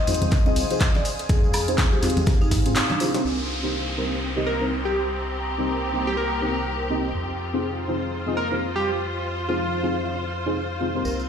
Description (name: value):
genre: deep house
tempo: 123 BPM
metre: 4/4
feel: swing 59% on 16ths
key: unclear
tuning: A4 = 442 Hz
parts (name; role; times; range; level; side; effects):
- marimba with medium mallets; melody; 0.0-3.1, 11.1-11.2 s; D4 to Eb5; -30 LUFS; left 2 dB; ping-pong delay
- deep dark ambient pad; sustained chords; 0.0-11.3 s; C5 to F6; -34 LUFS; equal; chorus, built-in reverb, sidechain pumping
- deep mellow chord stab; stabs; 0.0-11.3 s; C4 to Eb5; -27 LUFS; equal; chorus, phaser, vintage 12-bit sampler grit, sidechain pumping, ping-pong delay
- round analog bass; bass; 0.1-11.3 s; C2 to Ab2; -29 LUFS; equal; tube saturation, sidechain pumping
- breakbeat sampler-style drum kit; drums; 0.1-3.2 s; hi-hat, snare drum; -36 LUFS; equal; none
- deep house drum kit; drums; 0.1-10.9 s; crash cymbal, handclaps, hi-hat, woodblock; -27 LUFS; equal; low-pass filter on hats, low-pass filter on perc, low-pass filter on snare, low-pass filter on cymbals, low-pass filter on room
- congas; percussion; 0.1-3.2 s; none; -31 LUFS; equal; none
- tambourine; percussion; 0.1-3.2, 11.1-11.3 s; none; -35 LUFS; left 2 dB; none
- electronic kick drum; drums; 0.3-2.6 s; none; -20 LUFS; equal; none
- downlifter; sound effects; 3.2-7.1 s; none; -33 LUFS; equal; none
- clear studio string section; texture; 3.2-11.3 s; C4 to C5; -31 LUFS; equal; sidechain pumping
- plucky unison lead; melody; 4.5-10.2 s; F4 to Bb4; -28 LUFS; right 1 dB; cassette tape, ping-pong delay
room: light reverb, digital ambience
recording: played on a big sound system in a bare room, stone room reverb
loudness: -21 LUFS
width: side -8 dB against mid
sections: 0.0-3.2 A section; 3.2-11.3 B section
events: band accent 2.8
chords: 0.0 Fm7; 3.2 Cm7; 7.1 Fm7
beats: 0.32 0.81 | 1.29 1.78 2.27 2.76 | 3.25 3.73 4.22 4.71 | 5.20 5.68 6.17 6.66 | 7.15 7.64 8.12 8.61 | 9.10 9.59 10.07 10.56 | 11.05